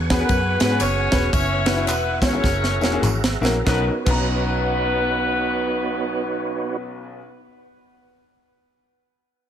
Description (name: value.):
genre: uptempo gospel.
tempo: 92-121 BPM.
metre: 4/4.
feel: swing 62% on 8ths.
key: B major.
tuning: A4 = 441 Hz.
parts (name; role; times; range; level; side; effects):
bright upright piano; accompaniment; 0.0-7.2 s; B1 to A#5; -26 LUFS; left 3 dB; none.
tonewheel organ; sustained chords; 0.0-6.8 s; B3 to C#6; -28 LUFS; right 5 dB; slow rotary speaker, overdrive, chorus vibrato.
vintage muted fingered electric bass; bass; 0.0-7.2 s; E1 to G#2; -25 LUFS; equal; none.
mellow horn section; melody; 0.1-7.2 s; B3 to C#5; -24 LUFS; left 1 dB; tape echo.
tight funk drum kit; drums; 0.1-4.2 s; crash cymbal, kick drum, ride cymbal, snare drum, toms; -23 LUFS; right 1 dB; none.
tambourine and handclaps; percussion; 0.1-4.2 s; none; -33 LUFS; equal; none.
room: light reverb, studio ambience.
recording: none.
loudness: -18 LUFS.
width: side -9 dB against mid.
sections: 0.0-3.7 A section; 3.7-8.9 B section.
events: slowing down 0.0-3.7; drum fill 2.4-3.7.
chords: 0.0 C#7sus4; 2.4 F#9; 3.7 Bmaj9.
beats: 0.30 0.81 | 1.33 1.87 2.44 3.03 | 3.66 4.31 4.96 5.61 | 6.26 6.91.